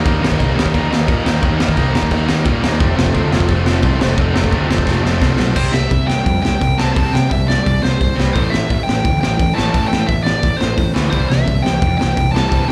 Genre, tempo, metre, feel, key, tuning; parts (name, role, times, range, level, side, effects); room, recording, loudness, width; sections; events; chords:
punk rock; 173 BPM; 4/4; straight; A4 = 440 Hz
raw garage guitar; riff; 0.0-12.7 s; F2 to Eb4; -22 LUFS; equal; overdrive
fuzz picked electric bass; bass; 0.0-12.7 s; F1 to C3; -20 LUFS; equal; overdrive
raw garage drum kit; drums; 0.1-12.6 s; crash cymbal, hi-hat, kick drum, snare drum; -20 LUFS; equal
biting lead guitar; melody; 5.6-12.7 s; C5 to A5; -24 LUFS; equal; overdrive, slapback echo, delay
small room ambience; live gig heard through the venue's PA, club reverb; -16 LUFS; mono
0.0-5.6 A section; 5.6-12.7 B section
drum fill 4.9-5.6
0.0 Eb; 2.8 F; 5.6 C5; 8.3 A5; 11.1 C